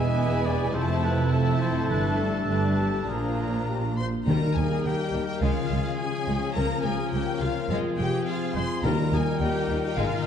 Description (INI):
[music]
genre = cinematic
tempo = 105 BPM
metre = 4/4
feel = straight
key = Eb major from 4.3 s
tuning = A4 = 437 Hz
[part]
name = rich studio violin section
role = melody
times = 0.0-10.3 s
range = F5 to C6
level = -34 LUFS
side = left 4 dB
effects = none
[part]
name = clear clarinet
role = second line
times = 0.0-4.0 s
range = B3 to D4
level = -40 LUFS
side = left 1 dB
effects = none
[part]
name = clear cor anglais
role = second line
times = 0.0-3.6 s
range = Ab4 to E5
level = -36 LUFS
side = right 1 dB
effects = none
[part]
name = mellow flute section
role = second line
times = 0.0-4.0 s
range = G#5 to Bb5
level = -37 LUFS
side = right 1 dB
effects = none
[part]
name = rich symphonic violin section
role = second line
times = 0.0-10.3 s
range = G3 to F4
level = -35 LUFS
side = left 3 dB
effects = none
[part]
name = rich studio viola section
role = accompaniment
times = 0.0-10.3 s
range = F3 to C5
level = -34 LUFS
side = equal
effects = none
[part]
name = dark trombone section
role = sustained chords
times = 0.0-4.0 s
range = G2 to A3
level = -33 LUFS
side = right 2 dB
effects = none
[part]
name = mellow French horn section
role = sustained chords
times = 0.0-10.3 s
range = Cb3 to G4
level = -35 LUFS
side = left 3 dB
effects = none
[part]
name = concert harp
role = arpeggios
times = 0.0-10.3 s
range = E2 to F5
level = -32 LUFS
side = left 8 dB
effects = none
[part]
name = clear trumpet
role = stabs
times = 0.0-10.3 s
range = Ab4 to B4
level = -36 LUFS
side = equal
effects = none
[part]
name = dark symphonic cello section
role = bass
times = 0.0-10.1 s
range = Db2 to Bb2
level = -31 LUFS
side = right 1 dB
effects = none
[part]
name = warm symphonic double bass section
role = bass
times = 0.0-10.1 s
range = E1 to Eb2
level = -30 LUFS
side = right 3 dB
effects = none
[part]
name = timpani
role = percussion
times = 4.3-5.1, 8.8-9.7 s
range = Eb3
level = -27 LUFS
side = equal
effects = none
[sound]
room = wet scoring stage reverb, RT60 1.6 s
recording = dark, warm production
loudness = -23 LUFS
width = side -8 dB against mid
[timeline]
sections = 0.0-4.3 A section; 4.3-10.3 B section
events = none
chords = 0.0 E; 0.7 F; 1.9 Gsus2; 3.1 Bb7; 4.3 Eb; 5.4 Db; 6.6 Bbm/Db; 7.7 Fm; 8.8 Eb